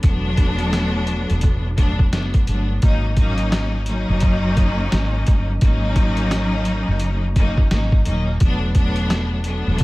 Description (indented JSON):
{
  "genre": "hip hop, boom-bap hip-hop",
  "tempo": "86 BPM",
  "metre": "4/4",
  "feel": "swing 61% on 16ths",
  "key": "G# minor",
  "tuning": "A4 = 440 Hz",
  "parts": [
    { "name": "rich studio string section", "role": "accompaniment", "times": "0.0-9.8 s", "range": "F#3 to D#4", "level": "-22 LUFS", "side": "left 1 dB", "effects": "none" },
    { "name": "woody fretless electric bass", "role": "bass", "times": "0.0-9.8 s", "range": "D#1 to G#1", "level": "-22 LUFS", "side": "equal", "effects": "lush chorus" },
    { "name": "trip hop sampler-style drum kit", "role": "drums", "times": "0.0-9.8 s", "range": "hi-hat, kick drum, snare drum", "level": "-18 LUFS", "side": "equal", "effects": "none" }
  ],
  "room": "digital ambience",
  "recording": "vinyl crackle",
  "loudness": "-16 LUFS",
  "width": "side -20 dB against mid",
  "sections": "0.0-9.8 A section",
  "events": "none",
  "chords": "0.0 E9sus4; 2.8 G#9sus4; 8.4 E9sus4"
}